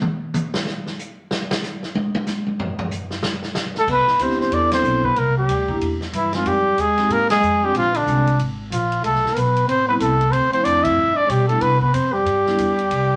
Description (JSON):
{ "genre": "jazz, small-group swing and bop", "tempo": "186 BPM", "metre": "4/4", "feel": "swing 61% on 8ths", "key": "C major", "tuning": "A4 = 440 Hz", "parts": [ { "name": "swinging big-band drum kit", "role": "drums", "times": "0.0-13.0 s", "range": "crash cymbal, hi-hat, kick drum, ride cymbal, snare drum, toms", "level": "-29 LUFS", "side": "equal", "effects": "none" }, { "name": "breathy trumpet", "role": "melody", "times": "3.8-13.2 s", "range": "D4 to E5", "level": "-21 LUFS", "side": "equal", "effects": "none" }, { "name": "breathy trombone", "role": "second line", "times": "3.8-13.2 s", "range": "D3 to E4", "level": "-28 LUFS", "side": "equal", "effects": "none" }, { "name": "upright bass", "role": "bass", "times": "3.9-13.2 s", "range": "G1 to C3", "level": "-26 LUFS", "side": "equal", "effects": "none" }, { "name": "vibraphone with medium mallets", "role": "accompaniment", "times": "4.2-12.6 s", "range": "F3 to Bb4", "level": "-28 LUFS", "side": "equal", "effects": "none" } ], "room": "wet studio reverb, RT60 0.7 s", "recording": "none", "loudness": "-20 LUFS", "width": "mono", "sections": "0.0-3.9 A section; 3.9-13.2 B section", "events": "trumpet solo 0.0-3.9; drum solo 0.0-3.9; band accent 4.7, 7.3, 10.8", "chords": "0.0 N.C.; 3.9 Cmaj7; 5.2 C7; 6.5 Fm7; 7.7 Bb9; 9.0 C5; 9.7 Am7; 10.3 Dm7; 11.0 G; 11.6 Cmaj7" }